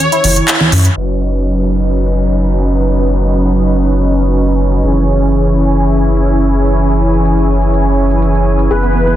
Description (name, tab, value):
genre	progressive house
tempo	124 BPM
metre	4/4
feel	straight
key	unclear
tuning	A4 = 439 Hz
part	wide unison lead	melody	0.0-0.9, 8.7-9.2 s	B4 to C#5	-16 LUFS	left 1 dB	lush chorus, digital delay
part	tight sequenced synth	arpeggios	0.0-0.9, 8.7-9.1 s	B3 to G#4	-19 LUFS	right 2 dB	chorus, digital delay
part	house drum kit	drums	0.0-9.2 s	crash cymbal, handclaps, hi-hat	-14 LUFS	equal	low-pass filter on hats, studio reverb, low-pass filter on snare, low-pass filter on cymbals
part	saturated sub bass	bass	0.2-9.2 s	F#1 to F#2	-13 LUFS	equal	none
part	congas	percussion	0.2-0.7 s	none	-17 LUFS	equal	studio reverb
part	lush unison pad	sustained chords	1.0-9.2 s	B3 to G#5	-18 LUFS	equal	chorus, phaser
part	soft supersaw	stabs	1.0-9.2 s	E3 to D#5	-15 LUFS	right 2 dB	low-pass filter, digital delay
part	downlifter	sound effects	1.2-4.8 s	none	-30 LUFS	equal	none
room	light reverb, digital ambience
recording	dense, heavily limited modern master, low-pass filter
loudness	-10 LUFS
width	side -12 dB against mid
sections	1.0-9.2 A section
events	band accent 0.5; filter sweep on supersaw synth 1.0-9.2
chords	0.0 F#5; 1.0 Badd9/F#; 4.8 C#m/F#